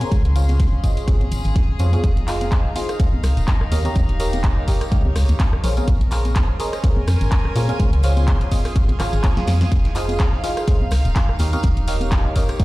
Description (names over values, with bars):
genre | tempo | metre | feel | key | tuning
piano house | 125 BPM | 4/4 | swing 56% on 16ths | unclear | A4 = 440 Hz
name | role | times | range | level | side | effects
barking FM electric piano | riff | 0.0-12.6 s | F4 to Ab5 | -27 LUFS | equal | phaser, sidechain pumping, low-pass filter, tape echo
organ-like FM bass | bass | 0.0-12.6 s | Eb1 to Bb2 | -19 LUFS | equal | sidechain pumping
house drum kit | drums | 0.0-12.6 s | handclaps, hi-hat, rim click, snare drum | -29 LUFS | equal | studio reverb
congas and tambourine | percussion | 0.0-12.6 s | none | -32 LUFS | left 3 dB | none
rich chamber string section | texture | 0.0-12.6 s | Db4 to C6 | -31 LUFS | right 1 dB | sidechain pumping
electronic kick drum | drums | 0.1-12.6 s | none | -18 LUFS | equal | studio reverb
vintage drum kit | drums | 9.7-12.6 s | hi-hat, snare drum | -39 LUFS | equal | none
room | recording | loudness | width
studio ambience | played on a big sound system in a bare room, large studio reverb | -16 LUFS | side -19 dB against mid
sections
0.0-12.6 A section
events
drum fill 9.4-9.7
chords
0.0 Bbm9; 2.0 Fm7; 3.7 Eb9; 5.6 Bbm9; 9.7 Fm7; 11.4 Eb9